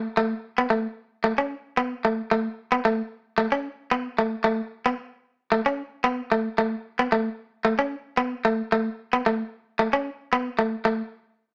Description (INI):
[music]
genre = highlife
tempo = 112 BPM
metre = 4/4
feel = swing 53% on 16ths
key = A major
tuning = A4 = 444 Hz
[part]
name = direct-recorded clean electric guitar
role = solo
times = 0.0-11.0 s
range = A3 to C#4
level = -24 LUFS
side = equal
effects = none
[sound]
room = moderate studio reverb, RT60 0.7 s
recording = band playing live in one room, small speaker sound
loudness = -26 LUFS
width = mono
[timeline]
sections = 0.0-10.9 A section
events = none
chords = none